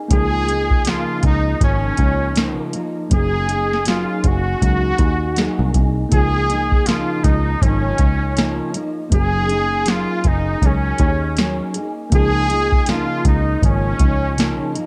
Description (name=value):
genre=indie pop, bedroom pop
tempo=80 BPM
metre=4/4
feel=swing 60% on 16ths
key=Db major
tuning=A4 = 438 Hz
part: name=nylon-string guitar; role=accompaniment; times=0.0-14.9 s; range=Db3 to Ab4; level=-27 LUFS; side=equal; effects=ensemble chorus, vibrato effect
part: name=tine electric piano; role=accompaniment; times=0.0-14.9 s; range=Bb3 to Ab4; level=-31 LUFS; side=equal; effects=overdrive
part: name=bright trumpet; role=melody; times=0.1-14.7 s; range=Db4 to Ab4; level=-24 LUFS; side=equal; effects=ensemble chorus, slapback echo
part: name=picked electric bass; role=bass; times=0.1-14.6 s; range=Gb1 to Eb2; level=-22 LUFS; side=equal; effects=none
part: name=soft vintage rhythm box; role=drums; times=0.1-14.9 s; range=hi-hat, kick drum, snare drum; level=-21 LUFS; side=equal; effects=none
room=light reverb, digital ambience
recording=dark, warm production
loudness=-18 LUFS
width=mono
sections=0.0-14.9 A section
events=none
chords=0.1 Db69; 3.1 Gb69; 6.1 Db69; 9.1 Gb69; 12.1 Db69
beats=| 0.11 0.86 1.61 2.36 | 3.12 3.87 4.62 5.37 | 6.12 6.87 7.62 8.37 | 9.12 9.87 10.62 11.37 | 12.12 12.88 13.63 14.38